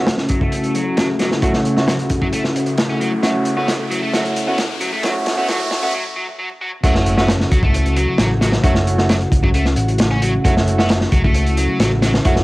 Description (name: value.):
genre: breakbeat, breaks.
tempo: 133 BPM.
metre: 4/4.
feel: straight.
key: F# minor pentatonic.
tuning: A4 = 437 Hz.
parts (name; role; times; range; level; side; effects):
lush unison pad; sustained chords; 0.0-12.4 s; C#3 to F#4; -22 LUFS; equal; chorus, sidechain pumping, cassette tape.
overdriven electric guitar; riff; 0.0-12.3 s; F#3 to C#4; -24 LUFS; left 1 dB; vintage 12-bit sampler grit, low-pass filter, cassette tape, tape echo.
clear baby grand piano; stabs; 0.0-12.4 s; A3 to F#4; -22 LUFS; right 1 dB; cassette tape, tape echo.
riser and impact; sound effects; 1.4-8.6 s; none; -29 LUFS; equal; none.
crunchy breakbeat drum kit; drums; 0.1-12.4 s; crash cymbal, hi-hat, kick drum, snare drum; -18 LUFS; equal; cassette tape.
hollow-body short-scale picked electric bass; bass; 6.8-12.4 s; F#1 to C#2; -18 LUFS; equal; none.
room: light reverb, small room ambience.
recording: home recording on cassette, vinyl crackle, high-pass filter.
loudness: -15 LUFS.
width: side -20 dB against mid.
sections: 0.0-6.8 A section; 6.8-12.4 B section.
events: build-up 0.0-6.8; filter sweep on overdriven electric guitar 0.0-6.8; filter sweep 0.0-6.8; riser 1.4-5.9; drum fill 3.2-5.9; break 5.9-6.8; drop 6.8-12.4; impact 6.8-8.6.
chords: 0.0 F#m7.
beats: 0.07 0.52 0.97 | 1.42 1.87 2.33 2.78 | 3.23 3.68 4.13 4.58 | 5.03 5.48 5.93 6.39 | 6.84 7.29 7.74 8.19 | 8.64 9.09 9.54 9.99 | 10.45 10.90 11.35 11.80 | 12.25.